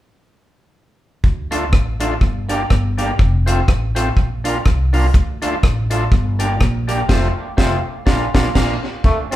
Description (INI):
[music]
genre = ska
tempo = 123 BPM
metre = 4/4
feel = swing 57% on 8ths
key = D minor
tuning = A4 = 441 Hz
[part]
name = upright bass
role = bass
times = 1.2-9.4 s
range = F1 to D2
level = -20 LUFS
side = equal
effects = none
[part]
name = deep reggae drum kit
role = drums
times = 1.2-9.4 s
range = crash cymbal, hi-hat, kick drum, rim click, snare drum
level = -17 LUFS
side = equal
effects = tape echo
[part]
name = electric guitar through a small old amp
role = accompaniment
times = 1.5-9.4 s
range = A3 to G4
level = -24 LUFS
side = right 2 dB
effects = tube saturation, tape echo
[part]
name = overdriven tonewheel organ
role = stabs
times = 1.5-9.4 s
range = C4 to Bb4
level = -25 LUFS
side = left 2 dB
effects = none
[part]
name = bright trombone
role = melody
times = 9.1-9.4 s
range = A3 to C4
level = -20 LUFS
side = equal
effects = none
[sound]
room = moderate large studio reverb, RT60 0.9 s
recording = band playing live in one room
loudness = -15 LUFS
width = side -14 dB against mid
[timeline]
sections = 1.2-9.0 A section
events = band accent 7.1-9.0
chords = 1.2 Dm; 2.2 Gm; 3.2 F; 4.2 Bb; 5.1 Dm; 6.1 Gm; 7.1 F; 8.1 Bb